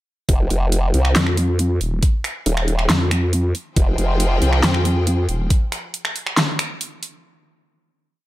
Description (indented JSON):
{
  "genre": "heavy wobble dubstep",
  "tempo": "138 BPM",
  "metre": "4/4",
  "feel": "half-time",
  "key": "F minor",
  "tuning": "A4 = 440 Hz",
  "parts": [
    { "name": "formant-sweep wobble bass", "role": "bass", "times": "0.3-4.6 s", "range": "Eb1 to C2", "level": "-17 LUFS", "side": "equal", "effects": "chorus, overdrive" },
    { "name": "dubstep drum kit", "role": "drums", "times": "0.3-7.1 s", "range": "finger snaps, handclaps, hi-hat, snare drum", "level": "-21 LUFS", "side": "equal", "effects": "overdrive" },
    { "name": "electronic kick drum", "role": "drums", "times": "0.3-5.6 s", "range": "none", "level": "-17 LUFS", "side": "equal", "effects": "overdrive" },
    { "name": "vowel-sweep wobble bass", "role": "bass", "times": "1.2-5.5 s", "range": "Eb1 to F2", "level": "-18 LUFS", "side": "equal", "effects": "chorus, overdrive" },
    { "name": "rich studio string section", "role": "sustained chords", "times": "3.8-5.5 s", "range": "F3 to G5", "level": "-26 LUFS", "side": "left 2 dB", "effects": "sidechain pumping" }
  ],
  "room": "little or no reverb",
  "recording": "none",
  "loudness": "-17 LUFS",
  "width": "side -16 dB against mid",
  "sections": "0.3-7.2 drop",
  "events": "drop 0.3-7.2",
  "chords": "0.3 Fmadd9"
}